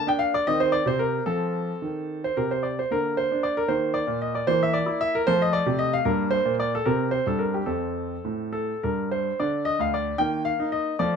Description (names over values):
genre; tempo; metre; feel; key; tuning
classical, baroque-style suite movement for grand piano; 68-78 BPM (dotted quarters); 6/8; rubato; unclear; A4 = 440 Hz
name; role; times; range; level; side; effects
clear grand piano; solo; 0.0-11.2 s; D2 to G5; -22 LUFS; equal; none
room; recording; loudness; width
moderate small room reverb, RT60 0.6 s; none; -22 LUFS; side -6 dB against mid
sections
0.0-9.4 A section; 9.4-11.2 B section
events
none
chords
0.5 Cm/Eb; 1.3 F; 2.9 Bb/D; 3.7 Eb5; 4.5 C9/E; 5.3 F; 6.1 Gm; 6.8 C5; 7.7 F; 9.4 N.C.; 10.2 Eb5